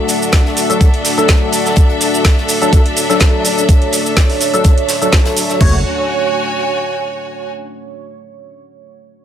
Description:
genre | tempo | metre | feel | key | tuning
bass house | 125 BPM | 4/4 | swing 54% on 16ths | F# minor | A4 = 440 Hz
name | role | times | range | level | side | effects
deep dark ambient pad | sustained chords | 0.0-5.8 s | A3 to F#5 | -20 LUFS | right 2 dB | chorus, built-in reverb, sidechain pumping
percussive organ stab | stabs | 0.0-5.8 s | F#3 to C#5 | -19 LUFS | left 3 dB | ensemble chorus, sidechain pumping, digital delay
clear studio string section | texture | 0.0-7.5 s | D4 to G#5 | -20 LUFS | left 1 dB | sidechain pumping
garage drum kit | drums | 0.1-5.6 s | cabasa, hi-hat, snare drum | -17 LUFS | right 1 dB | overdrive
modern studio drum kit | drums | 0.1-5.6 s | hi-hat, snare drum | -27 LUFS | left 3 dB | none
garage drum kit | drums | 0.3-5.7 s | crash cymbal, kick drum, toms | -10 LUFS | equal | overdrive
growling FM bass | bass | 5.6-5.8 s | F#1 | -18 LUFS | equal | sidechain pumping
room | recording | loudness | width
light reverb, small room reverb | none | -10 LUFS | side -10 dB against mid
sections
0.0-5.6 A section; 5.6-7.5 B section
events
none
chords
0.0 D; 5.6 F#m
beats
0.33 0.81 1.29 | 1.77 2.25 2.73 3.21 | 3.69 4.17 4.65 5.13 | 5.61 6.09 6.57 7.05

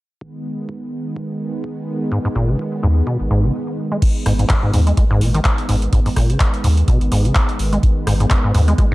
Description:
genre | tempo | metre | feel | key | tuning
acid house | 126 BPM | 4/4 | swing 56% on 16ths | G# minor | A4 = 440 Hz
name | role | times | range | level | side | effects
warm analog pad | sustained chords | 0.2-8.9 s | D#3 to B3 | -24 LUFS | right 1 dB | chorus, sidechain pumping
electronic kick drum | drums | 0.2-8.9 s | none | -16 LUFS | equal | high-pass filter on kick
acid bass, square | riff | 2.1-8.9 s | F#2 to G#3 | -19 LUFS | equal | tube saturation
saturated sub bass | bass | 2.4-8.9 s | G#1 to D#2 | -17 LUFS | equal | sidechain pumping
electro analog drum machine | drums | 4.0-8.9 s | crash cymbal, handclaps, hi-hat, rim click | -24 LUFS | equal | low-pass filter on hats, low-pass filter on cymbals, low-pass filter on snare
room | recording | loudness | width
little or no reverb | dark, warm production | -15 LUFS | side -19 dB against mid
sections
0.2-4.0 A section; 4.0-8.9 B section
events
break 3.5-4.0; filter sweep on acid bass 4.0-8.9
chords
0.2 G#m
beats
| 0.21 0.69 1.16 1.64 | 2.12 2.59 3.07 3.54 | 4.02 4.50 4.97 5.45 | 5.93 6.40 6.88 7.36 | 7.83 8.31 8.78

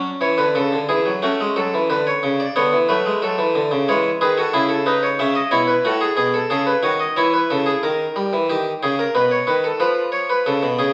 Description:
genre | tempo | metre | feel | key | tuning
classical, baroque-style 3-part fugue for harpsichord | 91 BPM | 3/4 | straight | F# minor | A4 = 440 Hz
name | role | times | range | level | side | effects
harpsichord | solo | 0.0-10.9 s | A2 to E5 | -19 LUFS | equal | none
room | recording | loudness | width
wet stone room reverb, RT60 1.0 s | very old 78 rpm record, vinyl crackle | -19 LUFS | mono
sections
0.0-7.8 A section; 7.8-10.9 B section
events
none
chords
0.0 F#m; 3.9 C#m; 5.8 F#m/A; 7.2 C#m/E; 7.8 D#7; 9.2 B9; 9.8 C#7/E#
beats
0.55 1.22 | 1.89 2.55 3.21 | 3.87 4.52 5.18 | 5.83 6.49 7.15 | 7.82 8.49 9.15 | 9.80 10.46

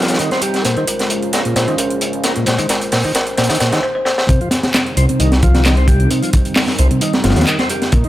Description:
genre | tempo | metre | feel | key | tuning
breakbeat, breaks | 132 BPM | 4/4 | straight | C phrygian | A4 = 440 Hz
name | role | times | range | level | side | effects
dark analog pad | sustained chords | 0.0-8.1 s | G3 to Bb4 | -23 LUFS | right 1 dB | chorus, sidechain pumping
tonewheel organ | riff | 0.0-8.1 s | Bb2 to C4 | -20 LUFS | equal | slow rotary speaker, vintage 12-bit sampler grit, tape echo
detuned saw bass | bass | 0.0-7.4 s | F1 to Eb2 | -16 LUFS | equal | high-pass filter
crunchy breakbeat drum kit | drums | 0.0-8.0 s | hi-hat, kick drum, snare drum | -16 LUFS | equal | high-pass filter on kick, high-pass filter on hats, high-pass filter on snare, high-pass filter on room
garage drum kit | drums | 0.1-8.1 s | handclaps, hi-hat | -23 LUFS | right 1 dB | overdrive
kalimba | melody | 0.7-4.2 s | Bb4 to C5 | -22 LUFS | left 1 dB | telephone sound, tape echo
room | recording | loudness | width
light reverb | none | -13 LUFS | side -14 dB against mid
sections
0.0-4.3 A section; 4.3-8.1 B section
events
build-up 0.0-4.3; filter sweep on tonewheel organ 0.0-4.3; drum fill 0.7-3.8, 4.1; drop 4.3-8.1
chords
0.0 Cm7; 0.7 Bbm7; 4.3 Cm7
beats
0.20 | 0.65 1.10 1.56 2.01 | 2.47 2.92 3.38 3.83 | 4.29 4.74 5.20 5.65 | 6.11 6.56 7.01 7.47 | 7.92

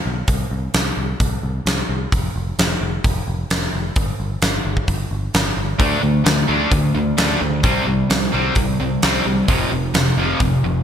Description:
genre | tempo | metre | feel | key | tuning
hard rock | 130 BPM | 4/4 | straight | D minor | A4 = 439 Hz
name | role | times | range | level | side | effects
picked electric bass | bass | 0.1-10.8 s | F1 to D2 | -23 LUFS | equal | none
huge arena drum kit | drums | 0.3-10.5 s | hi-hat, kick drum, snare drum | -20 LUFS | equal | gated reverb
sludgy distorted guitar | riff | 5.8-10.8 s | F2 to D4 | -18 LUFS | equal | overdrive
room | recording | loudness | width
light reverb, small room ambience | bright 1980s-style digital production | -16 LUFS | side -9 dB against mid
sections
0.0-10.8 A section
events
none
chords
0.3 N.C.; 5.8 D5; 7.6 C5; 9.5 F5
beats
| 0.28 0.74 1.20 1.66 | 2.12 2.58 3.04 3.50 | 3.96 4.42 4.88 5.34 | 5.80 6.26 6.72 7.18 | 7.64 8.10 8.56 9.02 | 9.48 9.94 10.40

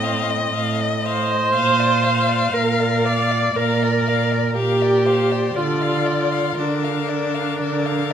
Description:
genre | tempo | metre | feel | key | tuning
classical, slow romantic movement for string quartet | 59 BPM | 4/4 | rubato | Bb major | A4 = 440 Hz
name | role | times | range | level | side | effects
warm violin | melody | 0.0-8.1 s | D5 to F5 | -27 LUFS | left 11 dB | none
rich violin | second line | 0.0-8.1 s | Bb4 to F5 | -25 LUFS | left 5 dB | none
rich viola | accompaniment | 0.0-8.1 s | C4 to D5 | -20 LUFS | right 1 dB | none
dark cello | bass | 0.0-8.1 s | A2 to D3 | -23 LUFS | right 4 dB | none
room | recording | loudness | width
moderate recital hall reverb, RT60 1.6 s | none | -17 LUFS | side -8 dB against mid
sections
0.0-8.1 A section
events
none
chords
0.0 F7/A; 1.5 Bb; 5.6 Bb/D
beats
0.54 | 1.54 2.53 3.55 4.55 | 5.55 6.57 7.59

